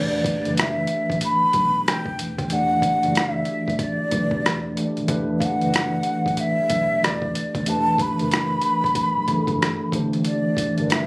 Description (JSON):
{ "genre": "R&B, neo-soul", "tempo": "93 BPM", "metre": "4/4", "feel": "swing 63% on 16ths", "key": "E minor", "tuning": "A4 = 441 Hz", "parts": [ { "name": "breathy jazz flute", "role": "melody", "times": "0.0-11.1 s", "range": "D5 to B5", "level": "-22 LUFS", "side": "equal", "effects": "slapback echo" }, { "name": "mellow tine electric piano", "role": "accompaniment", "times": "0.0-11.1 s", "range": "E3 to D5", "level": "-24 LUFS", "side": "equal", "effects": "medium stereo tremolo" }, { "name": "vintage muted fingered electric bass", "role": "bass", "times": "0.0-11.1 s", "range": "D#1 to D2", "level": "-31 LUFS", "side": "equal", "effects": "none" }, { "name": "boom bap sampler-style drum kit", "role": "drums", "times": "0.2-11.1 s", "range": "hi-hat, kick drum, rim click", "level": "-24 LUFS", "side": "equal", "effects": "none" } ], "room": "moderate studio ambience, RT60 0.5 s", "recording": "recorded on a phone in the room, club reverb", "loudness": "-19 LUFS", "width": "side -27 dB against mid", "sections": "0.0-11.1 A section", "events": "none", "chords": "0.0 Em11; 9.9 D9sus4" }